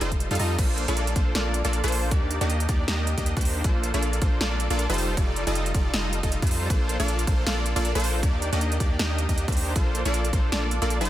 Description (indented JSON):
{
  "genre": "future bass",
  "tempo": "157 BPM",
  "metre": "4/4",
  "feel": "swing 55% on 16ths, half-time",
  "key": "Bb major",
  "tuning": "A4 = 437 Hz",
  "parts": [
    { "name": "supersaw stab", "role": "riff", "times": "0.0-11.1 s", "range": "G3 to F5", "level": "-27 LUFS", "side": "equal", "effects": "sidechain pumping, digital delay" },
    { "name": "long sustained 808-style bass", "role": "bass", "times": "0.0-11.1 s", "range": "F1 to F2", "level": "-27 LUFS", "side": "equal", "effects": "tube saturation, sidechain pumping" },
    { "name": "big-room dance drum kit", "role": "drums", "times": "0.0-11.1 s", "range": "crash cymbal, hi-hat, snare drum", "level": "-31 LUFS", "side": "right 2 dB", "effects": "overdrive" },
    { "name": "electronic kick drum", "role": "drums", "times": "0.1-10.4 s", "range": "none", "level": "-24 LUFS", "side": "equal", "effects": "none" }
  ],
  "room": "little or no reverb",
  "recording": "dense, heavily limited modern master",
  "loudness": "-22 LUFS",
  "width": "side -13 dB against mid",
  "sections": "0.6-11.1 A section",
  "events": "kick drops out 0.2-0.6; drop 0.6-11.1",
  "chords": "0.0 F9; 0.6 Bbmaj9; 2.1 Ebmaj7; 3.6 Bbmaj9; 5.0 F13; 6.7 Bbmaj9; 8.2 Ebmaj7; 9.8 Bbmaj9"
}